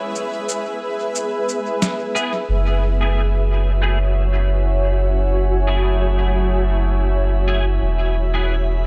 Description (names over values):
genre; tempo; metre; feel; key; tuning
ambient dub; 90 BPM; 4/4; swing 58% on 16ths; F# minor; A4 = 440 Hz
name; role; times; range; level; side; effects
granular cloud pad; sustained chords; 0.0-8.9 s; F#4 to G#5; -26 LUFS; equal; built-in reverb
electronic cabasa and snare drum; drums; 0.2-2.3 s; none; -27 LUFS; equal; overdrive, dub echo
clean electric guitar; stabs; 2.2-8.5 s; A3 to G#4; -30 LUFS; equal; ensemble chorus, low-pass filter, dub echo
soft dub sub bass; bass; 2.5-8.9 s; E1 to F#1; -20 LUFS; equal; none
drifting glass-harmonics texture; texture; 3.3-8.9 s; E4 to E5; -34 LUFS; equal; chorus, built-in reverb
room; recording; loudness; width
light reverb; none; -19 LUFS; mono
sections
0.0-2.5 A section; 2.5-8.9 B section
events
break 0.0-2.5; filter sweep on ambient pad 2.5-8.9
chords
0.0 E; 2.5 F#m7; 7.8 E